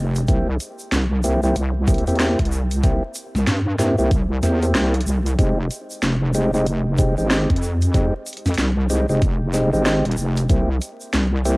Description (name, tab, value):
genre	glitch hop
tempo	94 BPM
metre	4/4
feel	swing 61% on 16ths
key	F minor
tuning	A4 = 440 Hz
part	wobble bass	bass	0.0-11.6 s	Eb1 to G2	-20 LUFS	equal	chorus
part	drum and bass drum kit	drums	0.2-11.6 s	hi-hat, snare drum	-24 LUFS	equal	overdrive, cassette tape
part	tube shaker	percussion	0.2-11.6 s	none	-35 LUFS	right 1 dB	none
part	mellow tonewheel organ	stabs	0.3-11.6 s	Ab3 to G4	-23 LUFS	equal	slow rotary speaker, vintage 12-bit sampler grit, sidechain pumping, tape echo
part	electronic kick drum	drums	0.3-10.7 s	none	-19 LUFS	equal	overdrive, cassette tape
room	light reverb, digital ambience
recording	home recording on cassette, vinyl crackle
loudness	-17 LUFS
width	side -25 dB against mid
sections	0.0-11.6 A section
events	none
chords	0.3 C7; 5.4 Fm9; 10.5 C7